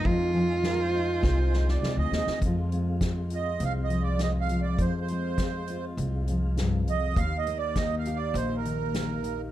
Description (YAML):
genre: acoustic folk duo or small band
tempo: 101 BPM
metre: 4/4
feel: straight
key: F dorian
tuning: A4 = 440 Hz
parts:
  - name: rich cello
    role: melody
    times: 0.0-2.1 s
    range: F4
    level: -28 LUFS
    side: right 2 dB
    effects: none
  - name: fingerpicked steel-string acoustic guitar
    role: accompaniment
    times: 0.0-9.5 s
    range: Eb2 to G4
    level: -31 LUFS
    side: left 2 dB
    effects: none
  - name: mellow tonewheel organ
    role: sustained chords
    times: 0.0-9.5 s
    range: C4 to Ab5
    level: -41 LUFS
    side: left 1 dB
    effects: slow rotary speaker, chorus vibrato
  - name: upright bass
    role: bass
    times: 0.0-9.5 s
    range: Bb1 to F2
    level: -30 LUFS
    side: equal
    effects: none
  - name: soft-mallet drum kit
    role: drums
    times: 0.0-9.4 s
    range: hi-hat, kick drum, ride cymbal, snare drum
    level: -31 LUFS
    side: equal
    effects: none
  - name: accordion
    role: second line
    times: 0.7-9.4 s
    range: Bb4 to F5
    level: -32 LUFS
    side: right 8 dB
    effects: light tremolo tuning
room: light reverb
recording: dark, warm production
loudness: -25 LUFS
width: side -13 dB against mid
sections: 0.0-2.4 A section; 2.4-9.5 B section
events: drum fill 1.2-2.4; accordion solo 2.4-9.5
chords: 0.1 Fm7; 2.4 Fm; 7.2 Ebadd9